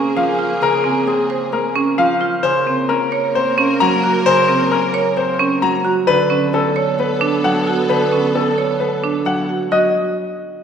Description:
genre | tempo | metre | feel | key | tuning
classical, minimalist pattern music | 132 BPM | 4/4 | straight | unclear | A4 = 440 Hz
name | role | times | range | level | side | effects
clear French horn | second line | 0.0-9.4 s | Ab4 to Bb4 | -25 LUFS | right 3 dB | none
Celtic harp | accompaniment | 0.0-9.9 s | Db3 to Db4 | -23 LUFS | equal | none
rich studio string section | sustained chords | 0.0-9.4 s | Bb3 to Bb4 | -25 LUFS | equal | none
marimba with hard mallets | arpeggios | 0.0-9.9 s | C4 to Db5 | -20 LUFS | right 5 dB | none
warm concert grand piano | melody | 0.2-9.9 s | Ab4 to Bb5 | -18 LUFS | left 3 dB | none
room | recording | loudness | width
wet scoring stage reverb, RT60 2.0 s | heard from further back in the room | -14 LUFS | side -7 dB against mid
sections
0.0-9.7 A section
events
none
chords
0.0 Bbm7; 2.4 Gb; 6.1 Bm7; 9.7 Ebm

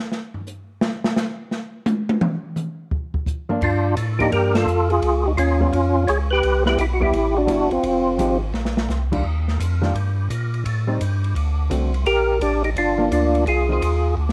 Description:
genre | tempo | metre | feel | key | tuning
soul jazz organ trio | 171 BPM | 4/4 | swing 65% on 8ths | G minor | A4 = 440 Hz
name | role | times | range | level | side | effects
open jazz drum kit | drums | 0.1-14.3 s | crash cymbal, hi-hat, kick drum, ride cymbal, snare drum, toms | -29 LUFS | equal | none
hollow-body jazz guitar | accompaniment | 3.5-13.8 s | D3 to G4 | -28 LUFS | equal | none
percussive tonewheel organ | melody | 3.6-8.4, 12.1-14.2 s | C4 to C#5 | -21 LUFS | equal | slow rotary speaker, chorus vibrato
tonewheel organ | bass | 3.6-14.3 s | F1 to Bb2 | -24 LUFS | equal | overdrive, chorus vibrato, slow rotary speaker
room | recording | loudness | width
light reverb, small room ambience | none | -21 LUFS | mono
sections
0.0-3.6 A section; 3.6-14.3 B section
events
drum solo 0.0-3.6; band accent 4.5; drum fill 8.5-8.9, 14.2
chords
0.0 N.C.; 2.9 Bb/F; 3.6 Gm7; 5.0 C#(#11); 6.4 Cmaj7; 7.8 Fm9; 8.5 Bb69; 9.2 Ebadd9; 10.6 Am7b5; 11.3 D7; 12.1 Gm7; 13.5 Fm7

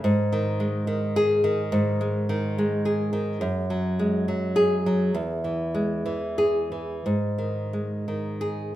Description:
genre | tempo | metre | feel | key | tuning
romantic piece for solo classical guitar | 58-72 BPM | 4/4 | rubato | unclear | A4 = 440 Hz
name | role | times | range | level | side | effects
nylon-string guitar | solo | 0.0-8.8 s | E2 to G#4 | -23 LUFS | equal | none
room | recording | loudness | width
moderate recital hall reverb, RT60 1.5 s | minimal, uncompressed stereo recording | -23 LUFS | side -14 dB against mid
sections
0.0-8.8 A section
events
none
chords
0.0 G#5; 3.4 F#sus2; 5.1 E; 7.0 G#5

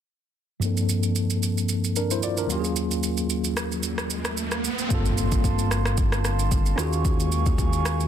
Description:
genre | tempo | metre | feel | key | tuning
amapiano | 112 BPM | 4/4 | swing 55% on 16ths | unclear | A4 = 440 Hz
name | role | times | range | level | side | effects
tine electric piano | accompaniment | 0.6-8.1 s | Eb2 to D5 | -26 LUFS | left 1 dB | overdrive, fast stereo tremolo, low-pass filter
deep house drum kit | drums | 0.6-8.1 s | kick drum, rim click, shaker | -27 LUFS | equal | overdrive
riser and impact | sound effects | 3.4-7.0 s | none | -32 LUFS | right 2 dB | none
glass harmonica | sustained chords | 4.9-8.1 s | Ab3 to Db6 | -31 LUFS | right 3 dB | sidechain pumping
fat analog bass | bass | 4.9-8.1 s | G1 to Eb2 | -24 LUFS | equal | none
room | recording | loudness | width
little or no reverb | dense, heavily limited modern master | -22 LUFS | side -9 dB against mid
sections
0.6-4.9 A section; 4.9-8.1 B section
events
filter sweep on tine electric piano 0.6-4.9; riser 3.4-4.9; impact 4.9-7.0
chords
0.6 Gm11; 2.5 Ebm11; 4.6 N.C.; 4.9 Gm11; 6.8 Ebm11

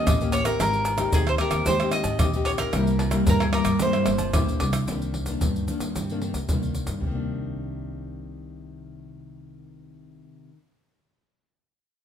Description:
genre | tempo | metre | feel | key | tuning
samba and choro | 112 BPM | 4/4 | straight | C minor from 4.9 s | A4 = 440 Hz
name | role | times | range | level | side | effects
bowl-back mandolin | melody | 0.0-4.6 s | Ab4 to Eb5 | -26 LUFS | right 3 dB | none
nylon-string guitar | accompaniment | 0.0-10.7 s | G2 to G4 | -29 LUFS | left 4 dB | none
upright bass | bass | 0.0-10.2 s | G1 to Ab2 | -29 LUFS | equal | none
agogo bells, tube shaker, surdo, pandeiro and tamborim | percussion | 0.1-7.1 s | none | -25 LUFS | equal | none
room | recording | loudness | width
moderate large studio reverb, RT60 1.0 s | minimal, uncompressed stereo recording | -22 LUFS | side -8 dB against mid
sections
0.0-4.9 A section; 4.9-7.0 B section; 7.0-11.3 C section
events
none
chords
0.0 Eb7; 0.6 Abmaj7; 2.7 C7; 4.9 Cm9

